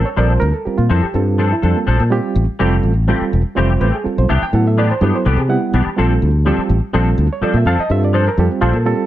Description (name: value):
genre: jazz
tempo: 249 BPM (eighths)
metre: 7/8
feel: straight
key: Bb lydian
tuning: A4 = 442 Hz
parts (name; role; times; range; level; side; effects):
- bright reed electric piano; accompaniment; 0.0-9.1 s; Gb3 to G5; -19 LUFS; right 4 dB; fast tremolo
- clean electric guitar; stabs; 0.0-8.8 s; E3 to A4; -21 LUFS; left 5 dB; ensemble chorus
- fingered electric bass; bass; 0.0-8.9 s; E1 to C3; -15 LUFS; equal; none
room: light reverb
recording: none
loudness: -13 LUFS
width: side -13 dB against mid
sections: 0.0-9.1 A section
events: none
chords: 0.0 Bbmaj9; 2.6 Fmaj9; 4.3 Cmaj9; 6.0 Bbmaj9